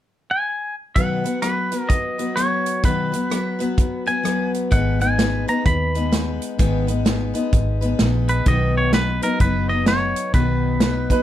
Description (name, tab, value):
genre	honky-tonk and classic country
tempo	128 BPM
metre	4/4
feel	swing 62% on 8ths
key	B major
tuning	A4 = 441 Hz
part	twangy electric guitar	melody	0.3-11.2 s	A#4 to B5	-23 LUFS	right 1 dB	none
part	picked steel-string acoustic guitar	accompaniment	1.0-11.2 s	G#2 to B4	-23 LUFS	left 3 dB	none
part	natural country drum kit	drums	1.0-11.2 s	hi-hat, kick drum, rim click, snare drum	-20 LUFS	equal	none
part	vintage muted fingered electric bass	bass	4.7-11.1 s	F#1 to D#2	-22 LUFS	right 1 dB	none
part	bright upright piano	second line	11.1-11.2 s	B4	-19 LUFS	right 10 dB	none
room	light reverb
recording	dark, warm production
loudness	-18 LUFS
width	side -12 dB against mid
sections	1.0-8.5 A section; 8.5-11.2 B section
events	none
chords	0.0 N.C.; 1.0 B; 4.7 G#m; 8.5 B